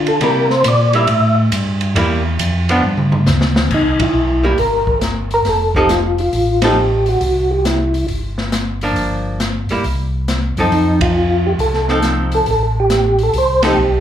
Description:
soul jazz organ trio; 137 BPM; 4/4; swing 67% on 8ths; C mixolydian; A4 = 440 Hz
percussive tonewheel organ; melody; 0.0-8.1, 10.7-14.0 s; Eb4 to E5; -16 LUFS; equal; slow rotary speaker, chorus vibrato, plate reverb, slapback echo
mellow tonewheel organ; bass; 0.0-14.0 s; F1 to D3; -18 LUFS; equal; chorus vibrato, slow rotary speaker
open jazz drum kit; drums; 0.1-13.7 s; crash cymbal, hi-hat, kick drum, ride cymbal, snare drum, toms; -21 LUFS; left 1 dB; slapback echo
archtop guitar, miked and amplified; accompaniment; 0.2-13.8 s; F3 to A4; -18 LUFS; equal; plate reverb, slapback echo
moderate club reverb, RT60 0.8 s; live gig heard through the venue's PA, club reverb; -13 LUFS; side -10 dB against mid
0.0-3.7 A section; 3.7-14.0 B section
tonewheel organ solo 0.0-3.7; drum fill 2.8-3.7; band accent 3.9, 6.6, 10.9, 13.6
0.2 C7; 2.8 G5; 3.7 C7; 5.5 F7; 7.2 C; 9.0 Gm7; 9.8 Cdim7; 10.7 F7
| 0.21 0.64 1.08 1.52 | 1.95 2.39 2.83 3.27 | 3.70 4.14 4.58 5.02 | 5.46 5.89 6.33 6.77 | 7.21 7.65 8.08 8.52 | 8.96 9.40 9.84 10.27 | 10.71 11.15 11.59 12.02 | 12.46 12.90 13.34 13.77

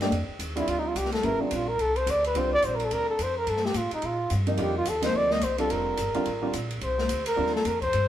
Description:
modal jazz; 215 BPM; 4/4; swing 60% on 8ths; C dorian; A4 = 437 Hz
warm upright piano; accompaniment; 0.0-7.5 s; C3 to G4; -30 LUFS; right 2 dB
upright bass; bass; 0.0-8.1 s; F1 to Bb2; -32 LUFS; equal
open jazz drum kit; drums; 0.0-8.0 s; hi-hat, kick drum, ride cymbal, snare drum; -33 LUFS; left 2 dB
breathy trumpet; melody; 0.6-8.1 s; D4 to Eb5; -26 LUFS; equal
moderate stone room reverb, RT60 1.2 s; band playing live in one room; -24 LUFS; side -11 dB against mid
0.0-8.1 A section
trumpet solo 0.0-8.1
0.0 C9sus4
| 0.12 0.40 0.68 0.95 | 1.23 1.51 1.79 2.07 | 2.35 2.63 2.91 3.19 | 3.47 3.75 4.03 4.30 | 4.58 4.86 5.14 5.42 | 5.70 5.98 6.26 6.54 | 6.82 7.09 7.37 7.65 | 7.93

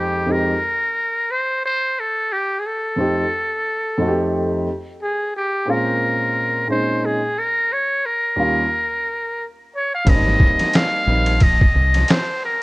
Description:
hip hop, jazz-hop; 89 BPM; 4/4; swing 57% on 16ths; F minor; A4 = 440 Hz
trumpet with metal mute; melody; 0.0-12.6 s; G4 to F5; -20 LUFS; equal
dark baby grand piano; accompaniment; 0.0-11.3 s; Eb2 to G5; -21 LUFS; equal
deep dub fingered electric bass; bass; 10.1-12.0 s; Ab1 to C2; -18 LUFS; equal
trip hop sampler-style drum kit; drums; 10.1-12.3 s; hi-hat, kick drum, ride cymbal, snare drum; -17 LUFS; equal
little or no reverb; worn, warbling old tape, cassette tape, warbly pitch drift; -17 LUFS; side -23 dB against mid
0.0-12.6 A section
0.0 Fm9; 2.0 F7; 4.7 Bbm9; 7.4 Eb7; 10.1 Abmaj7 (rootless)
0.63 1.30 | 1.98 2.65 3.33 4.00 | 4.67 5.35 6.02 6.70 | 7.37 8.04 8.72 9.39 | 10.07 10.74 11.41 12.09

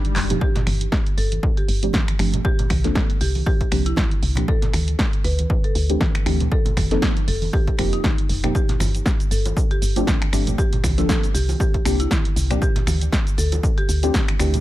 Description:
deep house; 118 BPM; 4/4; swing 56% on 16ths; G minor; A4 = 440 Hz
marimba with medium hard mallets; melody; 0.0-14.1 s; D4 to B4; -31 LUFS; equal; dub echo
punchy analog drum machine; drums; 0.0-14.6 s; finger snaps, handclaps, hi-hat, shaker, snare drum; -27 LUFS; equal
woody FM bass; bass; 0.2-14.6 s; F1 to D2; -22 LUFS; equal; sidechain pumping
deep mellow chord stab; stabs; 0.3-14.6 s; E3 to A4; -26 LUFS; equal; chorus, sidechain pumping, tape echo
congas and bongos; percussion; 0.3-14.6 s; -30 LUFS; right 3 dB
electronic kick drum; drums; 0.4-14.3 s; -21 LUFS; equal
digital ambience; -18 LUFS; side -15 dB against mid
0.0-14.6 A section
filter sweep on synth stab 0.0-14.6; drum fill 0.2
0.4 G9sus4; 2.4 C9sus4; 4.5 D9sus4; 6.5 F9sus4; 8.5 G9sus4; 10.6 C9sus4; 12.6 D9sus4
| 0.41 0.92 1.43 1.94 | 2.45 2.96 3.46 3.97 | 4.48 4.99 5.50 6.01 | 6.51 7.02 7.53 8.04 | 8.55 9.06 9.57 10.07 | 10.58 11.09 11.60 12.11 | 12.62 13.12 13.63 14.14

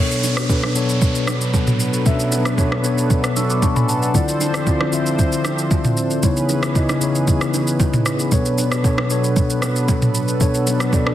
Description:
amapiano; 115 BPM; 4/4; straight; B dorian; A4 = 441 Hz
mellow tine electric piano; accompaniment; 0.0-11.1 s; B2 to E6; -19 LUFS; left 2 dB; slow stereo tremolo
warm analog pad; sustained chords; 0.0-11.1 s; E3 to C5; -25 LUFS; right 2 dB; chorus, sidechain pumping
downlifter; sound effects; 0.0-4.1 s; -28 LUFS; right 1 dB
smooth R&B drum kit; drums; 0.1-11.1 s; kick drum, rim click, shaker, toms; -20 LUFS; right 1 dB; soft clipping on snare
bongos and congas; percussion; 0.2-11.1 s; -29 LUFS; right 10 dB
light reverb; dense, heavily limited modern master; -16 LUFS; side -12 dB against mid
0.0-11.1 A section
0.0 Bm7; 4.1 Dm7; 6.2 C#m7; 8.3 Bm7
0.49 1.02 1.54 | 2.06 2.58 3.10 3.63 | 4.15 4.67 5.19 5.71 | 6.23 6.76 7.28 7.80 | 8.32 8.84 9.37 9.89 | 10.41 10.93

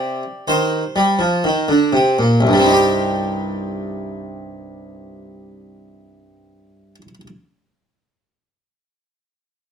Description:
classical, baroque-style suite movement for harpsichord; 64 BPM; 3/4; rubato; C minor; A4 = 440 Hz
harpsichord; solo; 0.0-7.3 s; C2 to D5; -16 LUFS; right 1 dB
moderate studio reverb, RT60 0.7 s; minimal, uncompressed stereo recording; -15 LUFS; side -7 dB against mid
0.0-2.4 A section; 2.4-8.0 B section
slowing down 0.0-2.4
0.0 Cm
0.48 1.44 | 2.41 3.34 4.27 | 5.19 6.13 7.08

